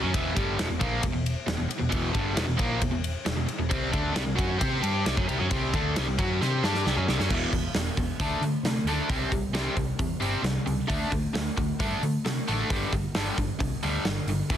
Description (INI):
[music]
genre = hard rock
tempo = 134 BPM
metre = 4/4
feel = straight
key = E minor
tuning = A4 = 440 Hz
[part]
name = cranked stack guitar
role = riff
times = 0.0-14.6 s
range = E2 to C5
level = -28 LUFS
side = equal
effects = overdrive
[part]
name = hollow-body short-scale picked electric bass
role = bass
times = 0.0-14.6 s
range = E1 to D3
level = -30 LUFS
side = equal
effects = none
[part]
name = big rock drum kit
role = drums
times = 0.1-14.6 s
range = crash cymbal, hi-hat, kick drum, ride cymbal, snare drum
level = -30 LUFS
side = equal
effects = none
[sound]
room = small room ambience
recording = dense, heavily limited modern master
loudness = -24 LUFS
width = side -10 dB against mid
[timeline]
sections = 0.0-7.3 A section; 7.3-14.6 B section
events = drum fill 6.4-7.3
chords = 0.1 Em; 3.7 C5; 7.3 E5; 8.2 D5; 9.1 C5; 10.9 D5; 12.7 G5